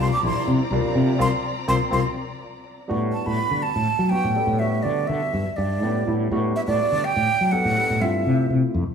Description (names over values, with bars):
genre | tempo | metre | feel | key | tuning
jazz | 247 BPM (eighths) | 7/8 | straight | A minor | A4 = 440 Hz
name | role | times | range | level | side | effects
breathy jazz flute | melody | 0.0-8.6 s | D5 to D6 | -24 LUFS | right 3 dB | none
barky tine electric piano | accompaniment | 0.0-8.8 s | G3 to A4 | -27 LUFS | right 2 dB | medium stereo tremolo
warm studio string section | sustained chords | 0.0-2.9 s | F3 to Bb5 | -32 LUFS | left 2 dB | none
fretless electric bass | bass | 0.0-8.9 s | Bb1 to F#3 | -23 LUFS | left 2 dB | none
room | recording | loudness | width
wet large studio reverb, RT60 1.4 s | band playing live in one room, studio ambience | -19 LUFS | side -7 dB against mid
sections
0.0-2.9 A section; 2.9-8.9 B section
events
flute solo 0.0-2.9; band accent 1.2-2.9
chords
0.0 C9sus4; 2.9 A13sus4; 8.0 G13sus4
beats
0.24 0.48 0.72 0.96 | 1.21 1.45 1.69 1.94 2.18 2.42 2.66 | 2.91 3.15 3.39 3.63 3.88 4.12 4.36 | 4.61 4.85 5.09 5.34 5.58 5.82 6.07 | 6.31 6.55 6.79 7.04 7.28 7.52 7.77 | 8.01 8.25 8.49 8.74